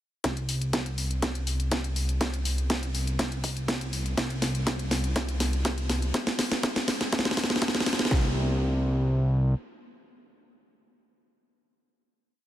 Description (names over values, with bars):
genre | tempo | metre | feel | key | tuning
progressive house | 122 BPM | 4/4 | straight | unclear | A4 = 441 Hz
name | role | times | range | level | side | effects
fat analog bass | bass | 0.2-9.5 s | C2 | -27 LUFS | equal | sidechain pumping
house drum kit | drums | 0.2-8.2 s | kick drum, snare drum | -30 LUFS | equal | high-pass filter on kick, high-pass filter on snare, high-pass filter on room
house drum kit | drums | 0.2-8.1 s | hi-hat, snare drum | -28 LUFS | equal | none
room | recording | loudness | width
moderate huge ambient reverb, RT60 4.0 s | none | -25 LUFS | side -13 dB against mid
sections
0.2-8.1 build; 8.1-12.0 final note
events
build-up 0.2-8.1; drum fill 0.2-8.1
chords
none